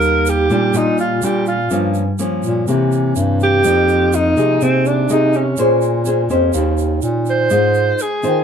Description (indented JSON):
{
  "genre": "bossa nova",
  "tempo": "124 BPM",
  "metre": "4/4",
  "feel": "straight",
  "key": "Eb major",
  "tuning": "A4 = 440 Hz",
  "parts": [
    { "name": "breathy alto saxophone", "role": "melody", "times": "0.0-8.4 s", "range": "C4 to C5", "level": "-16 LUFS", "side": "right 1 dB", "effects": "plate reverb" },
    { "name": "nylon-string guitar", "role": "accompaniment", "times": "0.0-8.4 s", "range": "G2 to C5", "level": "-18 LUFS", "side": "left 1 dB", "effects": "none" },
    { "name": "mellow bass clarinet", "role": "bass", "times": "0.0-8.4 s", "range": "Eb2 to Eb3", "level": "-18 LUFS", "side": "equal", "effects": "none" },
    { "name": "tube shaker", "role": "percussion", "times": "0.0-8.4 s", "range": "none", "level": "-31 LUFS", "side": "right 10 dB", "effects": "none" }
  ],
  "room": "moderate small room reverb, RT60 0.5 s",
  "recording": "dark, warm production",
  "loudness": "-13 LUFS",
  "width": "side -7 dB against mid",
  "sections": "0.0-8.4 A section",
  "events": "none",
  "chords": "0.0 Ebmaj7; 1.7 Gm7b5; 2.7 C7b9; 3.6 Fm11; 5.6 Bbm9; 6.5 Eb6; 7.5 Ab6"
}